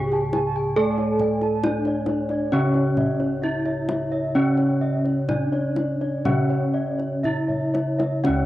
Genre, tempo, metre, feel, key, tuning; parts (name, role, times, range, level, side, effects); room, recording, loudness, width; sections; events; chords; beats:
Javanese gamelan; 59-70 BPM; 4/4; straight; C# pelog; A4 = 438 Hz
gamelan-type bronze metallophone; melody; 0.0-8.5 s; C#4 to A4-20c; -25 LUFS; equal; cassette tape
gamelan-type bronze metallophone; accompaniment; 0.0-8.5 s; C#3 to A3-20c; -26 LUFS; right 1 dB; cassette tape
gamelan-type bossed gongs; arpeggios; 0.0-8.5 s; C#5 to A5-20c; -30 LUFS; left 4 dB; cassette tape
gamelan-type bronze metallophone; arpeggios; 0.0-8.5 s; C#5 to A5-20c; -32 LUFS; right 2 dB; cassette tape
gamelan-type bossed gongs; bass; 0.0-8.5 s; C#2 to A4-20c; -27 LUFS; equal; tube saturation
kendang; percussion; 0.1-8.5 s; -29 LUFS; left 2 dB
moderate spring reverb, RT60 2.7 s; home recording on cassette; -20 LUFS; side -15 dB against mid
0.0-8.2 A section
drum fill 7.2-8.2
| 0.76 1.63 2.52 3.42 | 4.35 5.29 6.25 7.24 | 8.24